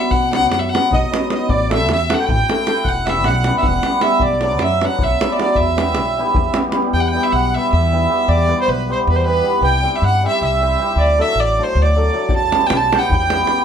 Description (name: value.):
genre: balkan folk, Balkan wedding band.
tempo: 311 BPM (eighths).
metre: 7/8.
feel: straight.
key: E minor.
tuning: A4 = 442 Hz.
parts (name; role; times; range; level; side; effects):
warm fiddle; melody; 0.0-13.6 s; B4 to A5; -19 LUFS; equal; none.
cimbalom; accompaniment; 0.0-13.6 s; F#3 to C5; -20 LUFS; left 1 dB; none.
upright bass; bass; 0.1-13.4 s; E1 to G2; -20 LUFS; equal; none.
davul; percussion; 0.1-6.9, 12.3-13.6 s; none; -20 LUFS; equal; none.
accordion; second line; 0.9-13.6 s; B4 to A5; -23 LUFS; right 5 dB; none.
room: moderate studio reverb, RT60 0.6 s.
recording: none.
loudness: -14 LUFS.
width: side -8 dB against mid.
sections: 0.0-6.9 A section; 6.9-13.6 B section.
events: none.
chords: 0.1 B; 1.5 Am; 2.9 Em; 4.2 Bm; 5.6 Em; 9.6 C; 11.0 D; 12.3 Em.